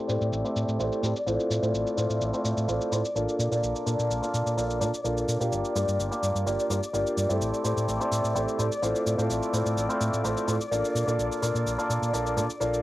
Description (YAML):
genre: filtered disco house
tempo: 127 BPM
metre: 4/4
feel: straight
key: unclear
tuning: A4 = 439 Hz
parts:
  - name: bright grand piano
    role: accompaniment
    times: 0.0-12.8 s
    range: A3 to D5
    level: -27 LUFS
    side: equal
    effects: phaser, vintage 12-bit sampler grit, low-pass filter
  - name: dark chamber string section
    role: sustained chords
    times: 0.0-12.8 s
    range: D5 to D6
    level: -33 LUFS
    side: left 2 dB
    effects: vintage 12-bit sampler grit, low-pass filter
  - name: hollow-body short-scale fingered electric bass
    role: bass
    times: 0.1-12.8 s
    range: G1 to Bb2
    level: -30 LUFS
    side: equal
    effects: low-pass filter
  - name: shaker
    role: drums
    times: 0.1-12.8 s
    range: none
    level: -38 LUFS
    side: equal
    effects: low-pass filter on hats, low-pass filter on perc, low-pass filter on snare, low-pass filter on cymbals, low-pass filter on room
room: light reverb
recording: home recording on cassette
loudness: -24 LUFS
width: side -16 dB against mid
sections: 0.0-12.8 A section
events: filter sweep 0.0-12.8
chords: 0.0 Am7; 1.5 Fmaj7/A; 3.4 Bbmaj7; 5.5 Gm7; 7.4 Am7; 9.1 Fmaj7/A; 11.0 Bbmaj7